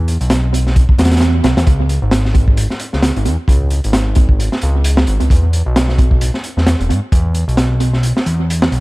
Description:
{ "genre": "breakbeat, breaks", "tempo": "132 BPM", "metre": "4/4", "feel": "swing 57% on 16ths", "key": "unclear", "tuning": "A4 = 440 Hz", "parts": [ { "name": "fat analog bass", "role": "bass", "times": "0.0-8.8 s", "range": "E1 to G#2", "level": "-14 LUFS", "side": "equal", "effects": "none" }, { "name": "crunchy breakbeat drum kit", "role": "drums", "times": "0.1-8.8 s", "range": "hi-hat, kick drum, snare drum", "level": "-14 LUFS", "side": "equal", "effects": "analog delay" } ], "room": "little or no reverb", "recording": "echo-heavy mix, vinyl crackle", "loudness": "-12 LUFS", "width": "side -21 dB against mid", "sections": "0.0-8.8 A section", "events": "none", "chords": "none", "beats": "0.30 0.76 1.21 | 1.67 2.12 2.58 3.03 | 3.49 3.94 4.40 4.85 | 5.30 5.76 6.21 6.67 | 7.12 7.58 8.03 8.49" }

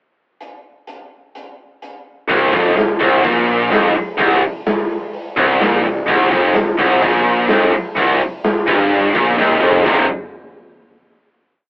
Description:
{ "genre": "hard rock", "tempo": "127 BPM", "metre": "4/4", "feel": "straight", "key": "C minor", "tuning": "A4 = 444 Hz", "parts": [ { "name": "big rock drum kit", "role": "drums", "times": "0.4-10.0 s", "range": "crash cymbal, hi-hat, kick drum, snare drum, toms", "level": "-19 LUFS", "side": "equal", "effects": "none" }, { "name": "distorted electric guitar", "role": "riff", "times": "2.3-10.1 s", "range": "C2 to C3", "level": "-15 LUFS", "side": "equal", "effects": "overdrive" }, { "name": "heavy high-gain guitar", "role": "riff", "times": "2.3-10.0 s", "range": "C2 to C3", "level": "-18 LUFS", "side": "equal", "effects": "distortion" }, { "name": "tight distorted guitar", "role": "riff", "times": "2.3-10.0 s", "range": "C2 to C3", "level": "-19 LUFS", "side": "equal", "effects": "distortion" }, { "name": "fuzz fingered electric bass", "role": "bass", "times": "2.3-10.1 s", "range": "C1 to Bb1", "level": "-25 LUFS", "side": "equal", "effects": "overdrive" } ], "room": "wet booth ambience, RT60 0.2 s", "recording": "rough rehearsal-room recording, telephone sound", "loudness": "-12 LUFS", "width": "side -37 dB against mid", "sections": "0.4-2.3 pickup bar; 2.3-9.9 riff; 9.9-11.7 final chord", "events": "drum fill 9.4-9.9", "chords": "0.4 N.C.; 2.3 C5", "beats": "| 0.41 0.88 1.35 1.82 | 2.30 2.77 3.25 3.72 | 4.19 4.67 5.14 5.61 | 6.08 6.56 7.03 7.50 | 7.97 8.45 8.92 9.39 | 9.86" }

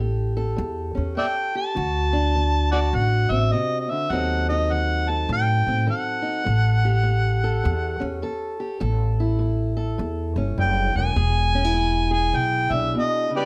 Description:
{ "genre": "acoustic country blues, solo or duo", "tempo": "102 BPM", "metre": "4/4", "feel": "swing 64% on 8ths", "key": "unclear", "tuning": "A4 = 438 Hz", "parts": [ { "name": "fingerpicked steel-string acoustic guitar", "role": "accompaniment", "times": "0.0-13.5 s", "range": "E2 to A4", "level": "-30 LUFS", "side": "equal", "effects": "none" }, { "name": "upright bass", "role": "bass", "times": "0.0-12.9 s", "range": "E1 to A2", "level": "-25 LUFS", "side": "equal", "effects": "none" }, { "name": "overdriven harmonica", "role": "melody", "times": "1.2-13.5 s", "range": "G4 to A5", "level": "-26 LUFS", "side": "equal", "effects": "slapback echo" } ], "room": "little or no reverb", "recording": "close, detailed microphones", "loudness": "-23 LUFS", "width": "mono", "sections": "0.0-13.5 A section", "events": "none", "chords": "0.0 A7; 1.8 D7; 4.1 D#dim7; 6.5 A7; 11.2 E7", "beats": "0.58 1.17 | 1.76 2.35 2.94 3.52 | 4.11 4.70 5.29 5.88 | 6.46 7.05 7.64 8.23 | 8.81 9.40 9.99 10.58 | 11.16 11.75 12.34 12.93" }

